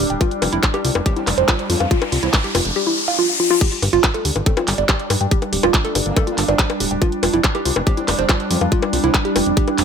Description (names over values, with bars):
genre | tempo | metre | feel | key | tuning
psychedelic trance | 141 BPM | 4/4 | straight | unclear | A4 = 441 Hz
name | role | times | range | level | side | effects
evolving wavetable pad | sustained chords | 0.0-9.8 s | G3 to D4 | -24 LUFS | right 1 dB | chorus, built-in reverb, sidechain pumping
woody wave-folded pluck | riff | 0.0-9.7 s | E4 to G5 | -21 LUFS | moving between left 5 dB and right 7 dB | chorus, auto-pan, sidechain pumping, tape echo
fat analog bass | bass | 0.0-9.8 s | D1 to G2 | -22 LUFS | equal | none
drum and bass drum kit | drums | 0.1-9.8 s | bongos, crash cymbal, handclaps, hi-hat | -21 LUFS | left 2 dB | none
electronic kick drum | drums | 0.2-9.7 s | none | -18 LUFS | equal | none
riser | sound effects | 1.2-3.6 s | none | -23 LUFS | left 3 dB | none
formant-sweep wobble bass | second line | 1.1-9.8 s | F3 to C4 | -34 LUFS | right 2 dB | none
room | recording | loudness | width
little or no reverb | none | -15 LUFS | side -7 dB against mid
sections
0.0-3.6 A section; 3.6-9.8 B section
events
riser 1.2-3.6; drop 3.6-9.8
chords
0.2 F5; 3.6 G5; 7.0 F5